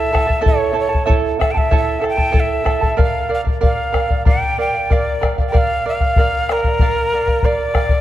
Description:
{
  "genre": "andean folk, Andean ensemble",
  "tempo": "95 BPM",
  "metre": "4/4",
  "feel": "straight",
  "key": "unclear",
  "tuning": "A4 = 440 Hz",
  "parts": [
    { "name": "breathy quena", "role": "melody", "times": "0.0-8.0 s", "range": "Bb4 to G5", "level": "-19 LUFS", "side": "equal", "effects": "none" },
    { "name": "charango", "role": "accompaniment", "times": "0.0-8.0 s", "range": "E4 to A5", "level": "-20 LUFS", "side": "right 4 dB", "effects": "none" },
    { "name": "bombo", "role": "percussion", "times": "0.1-8.0 s", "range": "none", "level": "-17 LUFS", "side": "left 1 dB", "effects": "none" }
  ],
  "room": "moderate concert hall reverb, RT60 2.3 s",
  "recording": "dark, warm production",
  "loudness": "-14 LUFS",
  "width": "side -13 dB against mid",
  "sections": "0.0-8.0 A section",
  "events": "none",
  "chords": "0.0 A; 3.0 Bb"
}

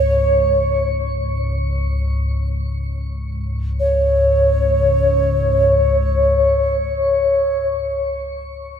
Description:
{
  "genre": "world meditative, free-time meditation music",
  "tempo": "free time",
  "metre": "none",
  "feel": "none",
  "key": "unclear",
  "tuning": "A4 = 439 Hz",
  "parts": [
    { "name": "breathy alto ocarina", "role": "melody", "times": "0.0-7.7 s", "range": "C#5", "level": "-18 LUFS", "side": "equal", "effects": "shimmer reverb, analog delay" },
    { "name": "deep rumbling drone", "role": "drone", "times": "0.0-7.7 s", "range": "C#2 to G#2", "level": "-20 LUFS", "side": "left 1 dB", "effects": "built-in reverb, phaser" },
    { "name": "glass harmonica", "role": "texture", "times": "4.0-7.7 s", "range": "C#5", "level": "-20 LUFS", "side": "equal", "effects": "shimmer reverb" }
  ],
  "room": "wet plate reverb, RT60 2.9 s",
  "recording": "echo-heavy mix",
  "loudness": "-15 LUFS",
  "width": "side -8 dB against mid",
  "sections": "0.0-3.8 A section; 3.8-8.1 B section",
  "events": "none",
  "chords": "none"
}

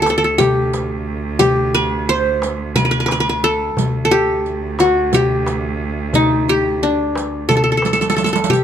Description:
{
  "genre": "Turkish makam ensemble",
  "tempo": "178 BPM (eighths)",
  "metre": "7/8",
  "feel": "straight",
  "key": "D makam hicaz",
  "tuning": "A4 = 439 Hz",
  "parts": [
    { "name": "qanun", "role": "melody", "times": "0.0-8.6 s", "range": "D4 to C5", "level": "-16 LUFS", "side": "left 1 dB", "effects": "plate reverb" },
    { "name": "bright cello", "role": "drone", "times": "0.0-8.6 s", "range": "D2", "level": "-25 LUFS", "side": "right 3 dB", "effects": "none" },
    { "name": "darbuka", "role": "percussion", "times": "0.1-8.6 s", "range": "none", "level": "-22 LUFS", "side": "left 1 dB", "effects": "none" },
    { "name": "riq", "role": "percussion", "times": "0.1-8.6 s", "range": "none", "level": "-23 LUFS", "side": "right 7 dB", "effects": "none" }
  ],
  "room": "light reverb",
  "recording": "close, detailed microphones",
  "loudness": "-14 LUFS",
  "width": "side -9 dB against mid",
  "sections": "0.0-8.5 A section",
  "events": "drum fill 7.8-8.5",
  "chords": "none"
}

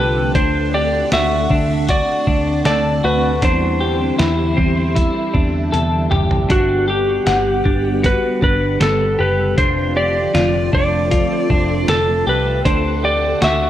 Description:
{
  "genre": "dream pop",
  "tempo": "78 BPM",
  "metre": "4/4",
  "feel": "straight",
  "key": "G major",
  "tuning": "A4 = 441 Hz",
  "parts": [
    { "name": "electric slide guitar", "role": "melody", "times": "0.0-13.7 s", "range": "F#4 to E5", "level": "-19 LUFS", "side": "equal", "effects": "tape echo" },
    { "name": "string machine, full ensemble", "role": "sustained chords", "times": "0.0-13.7 s", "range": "D3 to F#5", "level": "-22 LUFS", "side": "right 1 dB", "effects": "phaser, ensemble chorus" },
    { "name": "semi-hollow electric guitar", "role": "arpeggios", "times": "0.0-13.7 s", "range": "C4 to F#5", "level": "-21 LUFS", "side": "left 1 dB", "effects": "analog chorus, tape echo" },
    { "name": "vintage muted picked electric bass", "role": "bass", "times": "0.0-13.7 s", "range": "F1 to E2", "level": "-21 LUFS", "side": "equal", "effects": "none" },
    { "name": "lo-fi sampler-style drum kit", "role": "drums", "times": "0.3-13.6 s", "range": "hi-hat, kick drum, snare drum, toms", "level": "-20 LUFS", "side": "equal", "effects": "overdrive" }
  ],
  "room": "moderate spring reverb, RT60 2.5 s",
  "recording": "none",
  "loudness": "-14 LUFS",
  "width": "side -12 dB against mid",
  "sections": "0.0-13.7 A section",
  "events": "drum fill 5.7-6.5",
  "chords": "0.3 D7; 3.4 Cadd9; 6.5 Gmaj7; 9.6 F6; 12.7 D7"
}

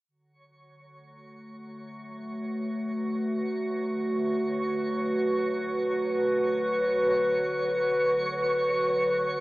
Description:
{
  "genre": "ambient",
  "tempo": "free time",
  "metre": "none",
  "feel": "none",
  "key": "unclear",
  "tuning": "A4 = 441 Hz",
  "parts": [
    { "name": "warbly tape-like pad", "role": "sustained chords", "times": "1.6-9.4 s", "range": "D3 to B4", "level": "-26 LUFS", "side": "equal", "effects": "chorus, built-in reverb" },
    { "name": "organ-like drone", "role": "drone", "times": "1.3-9.4 s", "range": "F#3 to F#4", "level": "-39 LUFS", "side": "equal", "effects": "ensemble chorus, built-in reverb" },
    { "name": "twinkling granular texture", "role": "texture", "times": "1.0-9.4 s", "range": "C#5 to C#6", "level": "-36 LUFS", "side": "equal", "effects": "built-in reverb" }
  ],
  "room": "moderate huge ambient reverb, RT60 9.1 s",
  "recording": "AM radio sound",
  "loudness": "-25 LUFS",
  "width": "side -19 dB against mid",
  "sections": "0.1-9.4 A section",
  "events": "fade-in on synth drone 0.1-9.4; fade-in on synth texture 0.1-9.4; filter sweep on ambient pad 0.1-9.4",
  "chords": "0.1 Bm7; 8.7 E7(no3) (rootless)"
}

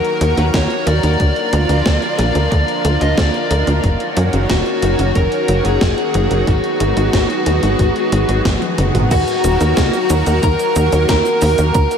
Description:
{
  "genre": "synthwave",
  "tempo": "91 BPM",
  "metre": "4/4",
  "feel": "straight",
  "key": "Eb minor",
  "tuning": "A4 = 441 Hz",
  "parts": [
    { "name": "fuzz lead guitar", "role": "melody", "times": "0.0-12.0 s", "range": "Gb4 to Eb5", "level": "-19 LUFS", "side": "left 2 dB", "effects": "distortion, ping-pong delay" },
    { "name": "lush unison pad", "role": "sustained chords", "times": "0.0-12.0 s", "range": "D3 to Bb4", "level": "-20 LUFS", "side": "right 1 dB", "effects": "chorus, sidechain pumping" },
    { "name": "gated 80s digital drum machine", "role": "drums", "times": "0.0-12.0 s", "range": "crash cymbal, hi-hat, shaker, snare drum, toms", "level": "-23 LUFS", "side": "equal", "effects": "gated reverb, gated reverb snare" },
    { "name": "tight sequencer bass", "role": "bass", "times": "0.2-11.9 s", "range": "Eb1 to Gb2", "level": "-16 LUFS", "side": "equal", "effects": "none" },
    { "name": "electronic kick drum", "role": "drums", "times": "0.5-11.9 s", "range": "none", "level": "-18 LUFS", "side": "equal", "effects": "none" },
    { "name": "soft synth bell", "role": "second line", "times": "9.1-12.0 s", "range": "Gb5 to Bb5", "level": "-24 LUFS", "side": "right 2 dB", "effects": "chorus, phaser, ping-pong delay" }
  ],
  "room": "moderate huge ambient reverb, RT60 9.3 s",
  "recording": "dreamy mix soaked in reverb",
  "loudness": "-13 LUFS",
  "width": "side -7 dB against mid",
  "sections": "0.0-9.1 A section; 9.1-12.0 B section",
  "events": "drum fill 8.5-9.1",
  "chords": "0.0 Ebm; 1.2 Bb; 3.8 Gb6; 6.5 Abm7; 9.1 Ebm"
}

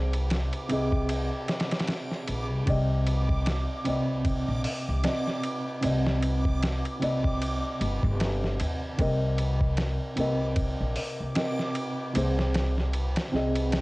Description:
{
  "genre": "trip hop",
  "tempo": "76 BPM",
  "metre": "4/4",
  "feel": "swing 57% on 16ths",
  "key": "C minor",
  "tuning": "A4 = 440 Hz",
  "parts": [
    { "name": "felt-muted upright piano", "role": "accompaniment", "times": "0.0-13.8 s", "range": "C3 to Eb5", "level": "-30 LUFS", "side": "equal", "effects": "harmonic tremolo, vintage 12-bit sampler grit, low-pass filter, cassette tape, tape echo" },
    { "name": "upright bass", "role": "bass", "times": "0.0-13.8 s", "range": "G1 to Eb2", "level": "-28 LUFS", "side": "equal", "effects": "tube saturation" },
    { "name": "backwards swelling texture", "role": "texture", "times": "0.0-13.8 s", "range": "D6", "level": "-41 LUFS", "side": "right 1 dB", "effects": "built-in reverb, cassette tape" },
    { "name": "dusty soul sampler-style drum kit", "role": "drums", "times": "0.1-13.8 s", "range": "hi-hat, kick drum, ride cymbal, snare drum", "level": "-31 LUFS", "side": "equal", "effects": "cassette tape" }
  ],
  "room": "little or no reverb",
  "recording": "home recording on cassette",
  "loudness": "-25 LUFS",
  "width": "side -22 dB against mid",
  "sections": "0.0-13.8 A section",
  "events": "none",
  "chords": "0.0 Ab/C; 2.7 Cmadd9; 9.0 Bbsus4/C; 12.2 Ab/C"
}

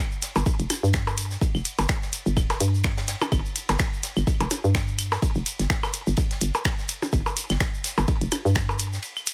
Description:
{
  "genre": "minimal techno",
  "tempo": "126 BPM",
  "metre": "4/4",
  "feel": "swing 56% on 16ths",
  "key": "unclear",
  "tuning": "A4 = 440 Hz",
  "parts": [
    { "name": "tube shaker", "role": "percussion", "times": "0.1-9.3 s", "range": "none", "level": "-38 LUFS", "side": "equal", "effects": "none" },
    { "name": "deep reggae drum kit", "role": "drums", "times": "0.2-9.3 s", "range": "ride cymbal, snare drum", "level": "-41 LUFS", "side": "equal", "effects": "high-pass filter on cymbals, high-pass filter on snare, high-pass filter on room" },
    { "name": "minimal click drum kit", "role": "drums", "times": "0.2-9.3 s", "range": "finger snaps, hi-hat", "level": "-30 LUFS", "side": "equal", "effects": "none" },
    { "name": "hollow knocking FM bass", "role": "bass", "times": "0.4-9.0 s", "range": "D1 to G2", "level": "-27 LUFS", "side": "equal", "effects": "sidechain pumping" },
    { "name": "percussion blips and claves", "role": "percussion", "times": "0.4-9.3 s", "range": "none", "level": "-31 LUFS", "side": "equal", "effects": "digital delay" },
    { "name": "electronic kick drum", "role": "drums", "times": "0.5-8.7 s", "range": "none", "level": "-28 LUFS", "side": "equal", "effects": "none" }
  ],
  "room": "small room ambience",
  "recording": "none",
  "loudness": "-25 LUFS",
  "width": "mono",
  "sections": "0.0-9.3 A section",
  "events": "none",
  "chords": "none"
}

